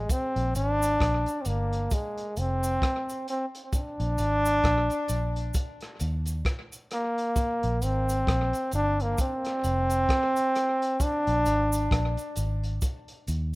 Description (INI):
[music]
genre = roots reggae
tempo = 66 BPM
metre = 4/4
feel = swing 58% on 16ths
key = unclear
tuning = A4 = 442 Hz
[part]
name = brilliant trombone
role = melody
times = 0.0-12.4 s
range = Ab3 to D4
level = -26 LUFS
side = equal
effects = tape echo
[part]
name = vintage muted fingered electric bass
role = bass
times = 0.0-13.6 s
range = F1 to Eb2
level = -28 LUFS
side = equal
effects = none
[part]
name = crunchy breakbeat drum kit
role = drums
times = 0.1-13.5 s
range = hi-hat, kick drum, rim click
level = -30 LUFS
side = equal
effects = none
[part]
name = cabasa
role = percussion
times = 0.1-13.5 s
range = none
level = -39 LUFS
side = right 3 dB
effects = none
[sound]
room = light reverb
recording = rough home demo mix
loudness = -24 LUFS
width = side -21 dB against mid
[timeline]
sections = 0.1-13.6 A section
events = none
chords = 0.1 Bb; 1.9 F5; 3.7 Bb; 5.5 Eb5; 7.4 Gmadd11; 9.2 F5; 11.0 Bb; 12.8 N.C.